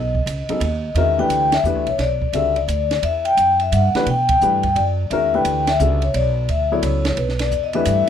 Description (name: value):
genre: modal jazz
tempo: 174 BPM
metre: 3/4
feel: swing 64% on 8ths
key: E dorian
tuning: A4 = 440 Hz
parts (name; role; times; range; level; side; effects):
- vibraphone with soft mallets; melody; 0.0-8.1 s; B4 to G5; -19 LUFS; left 3 dB; none
- upright bass; bass; 0.0-8.1 s; B1 to B2; -22 LUFS; right 1 dB; none
- compact cocktail drum kit; drums; 0.1-8.0 s; hi-hat, kick drum, ride cymbal, snare drum; -28 LUFS; right 3 dB; none
- dark baby grand piano; accompaniment; 0.5-8.1 s; D3 to C#5; -23 LUFS; left 2 dB; none
room: light reverb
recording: none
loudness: -16 LUFS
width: side -9 dB against mid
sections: 1.0-8.1 A section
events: band accent 1.5, 4.2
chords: 0.0 B; 1.0 Em7